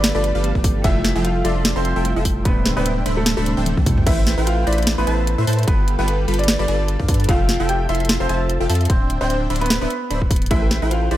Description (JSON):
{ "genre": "future bass", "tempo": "149 BPM", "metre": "4/4", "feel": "swing 55% on 16ths, half-time", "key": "A minor", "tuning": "A4 = 441 Hz", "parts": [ { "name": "clear grand piano", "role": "melody", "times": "0.0-11.2 s", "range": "A3 to G5", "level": "-25 LUFS", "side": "equal", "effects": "sidechain pumping, dub echo" }, { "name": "bell-like tine electric piano", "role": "accompaniment", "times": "0.0-4.1 s", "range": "C3 to G4", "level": "-27 LUFS", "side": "right 3 dB", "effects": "sidechain pumping, tape echo" }, { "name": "supersaw stab", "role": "riff", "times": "0.0-11.2 s", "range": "D3 to C6", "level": "-24 LUFS", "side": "equal", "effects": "sidechain pumping" }, { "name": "saturated sub bass", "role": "bass", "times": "0.0-11.2 s", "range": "D1 to A2", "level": "-21 LUFS", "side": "equal", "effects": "tube saturation, sidechain pumping" }, { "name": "trap drum kit", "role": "drums", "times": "0.0-11.2 s", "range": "crash cymbal, hi-hat, snare drum, toms", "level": "-22 LUFS", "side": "equal", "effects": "none" }, { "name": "electronic kick drum", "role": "drums", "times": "0.6-10.6 s", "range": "none", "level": "-18 LUFS", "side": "equal", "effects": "none" }, { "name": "thumb-piano-like synth pluck", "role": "arpeggios", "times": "10.5-11.2 s", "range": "G4 to E5", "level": "-31 LUFS", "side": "right 5 dB", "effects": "chorus, sidechain pumping" } ], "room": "digital ambience", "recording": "none", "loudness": "-16 LUFS", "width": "side -14 dB against mid", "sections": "0.0-4.1 A section; 4.1-11.2 A section", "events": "drop 0.0-4.1, 4.1-11.2; drum fill 3.7-4.1", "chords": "0.0 G9; 0.8 Fmaj9; 2.5 D7sus4; 4.1 Am7; 5.7 G9; 7.3 Fmaj9; 8.9 D7sus4; 10.5 Am7", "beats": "0.04 0.44 | 0.84 1.25 1.65 2.05 | 2.45 2.86 3.26 3.66 | 4.06 4.47 4.87 5.27 | 5.67 6.08 6.48 6.88 | 7.29 7.69 8.09 8.49 | 8.90 9.30 9.70 10.11 | 10.51 10.91" }